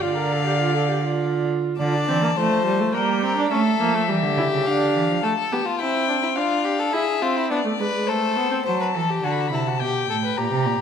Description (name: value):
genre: classical, baroque-style fugue for string quartet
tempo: 105 BPM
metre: 3/4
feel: straight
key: D minor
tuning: A4 = 440 Hz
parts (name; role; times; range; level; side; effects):
- dark violin; melody; 0.0-10.8 s; C5 to B5; -26 LUFS; left 8 dB; none
- warm violin; second line; 0.0-10.8 s; D4 to D5; -25 LUFS; left 3 dB; none
- warm viola; accompaniment; 0.0-8.6 s; G3 to Bb4; -24 LUFS; right 3 dB; none
- warm cello; bass; 0.0-5.1, 8.7-10.8 s; A2 to A3; -24 LUFS; right 4 dB; none
room: moderate scoring stage reverb, RT60 1.4 s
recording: none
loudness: -19 LUFS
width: side -7 dB against mid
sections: 0.0-1.8 A section; 1.8-8.7 B section; 8.7-10.8 A section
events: none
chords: 0.0 Dm; 2.9 Gm; 3.5 A7; 4.7 Dm; 5.2 Am; 6.4 Dm; 6.9 E7; 8.1 Am; 8.7 D7; 9.8 G/B